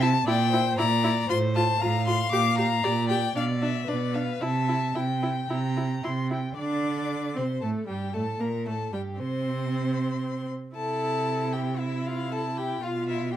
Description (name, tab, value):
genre	quick classical-period movement for string quartet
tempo	116 BPM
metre	4/4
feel	straight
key	unclear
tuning	A4 = 440 Hz
part	rich violin	melody	0.0-13.4 s	D5 to D6	-30 LUFS	left 6 dB	none
part	rich violin	second line	0.0-13.4 s	E4 to C6	-33 LUFS	left 2 dB	none
part	clear viola	accompaniment	0.0-13.4 s	G3 to G4	-32 LUFS	right 1 dB	none
part	clear cello	bass	0.0-13.4 s	G2 to D3	-28 LUFS	right 3 dB	none
room	light reverb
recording	dark, warm production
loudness	-24 LUFS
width	side -11 dB against mid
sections	0.0-6.6 A section; 6.6-13.4 B section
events	none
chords	0.3 C9/Bb; 1.3 F/A; 2.3 Gm/Bb; 3.4 Bdim; 4.4 C; 6.6 Gmadd9; 8.7 C5; 9.7 N.C.; 10.8 C; 12.8 G7/B (rootless)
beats	| 0.27 0.78 1.29 1.81 | 2.32 2.84 3.36 3.88 | 4.42 4.96 5.51 6.05 | 6.58 7.11 7.63 8.15 | 8.67 9.20 9.72 10.24 | 10.76 11.28 11.80 12.31 | 12.83 13.35